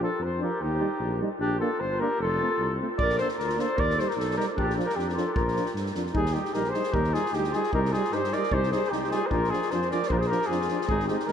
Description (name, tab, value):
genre	balkan folk, Balkan brass band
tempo	152 BPM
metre	2/4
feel	swing 54% on 16ths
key	Bb major, Eb major from 6.1 s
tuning	A4 = 441 Hz
part	warm flugelhorn	melody	0.0-11.3 s	G4 to D5	-28 LUFS	equal	none
part	warm clarinet	second line	0.0-11.3 s	D4 to Bb4	-32 LUFS	left 3 dB	none
part	dark trombone	accompaniment	0.0-11.3 s	C4 to Eb4	-36 LUFS	left 5 dB	none
part	mellow euphonium	accompaniment	0.0-11.3 s	F3 to Bb3	-34 LUFS	right 6 dB	none
part	dark tuba	bass	0.2-11.3 s	F1 to G2	-31 LUFS	right 1 dB	none
part	unplugged drum kit	percussion	3.0-11.3 s	kick drum, snare drum	-34 LUFS	equal	none
room	wet huge ambient reverb, RT60 8.9 s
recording	in a vast, echoing space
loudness	-24 LUFS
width	side -8 dB against mid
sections	0.0-6.1 A section; 6.1-11.3 B section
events	none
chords	0.0 Bb; 0.6 Eb; 1.4 Bb; 2.2 F; 3.0 Bb; 3.8 Eb; 4.6 Bb; 6.1 Eb; 7.7 Cm; 9.3 Bb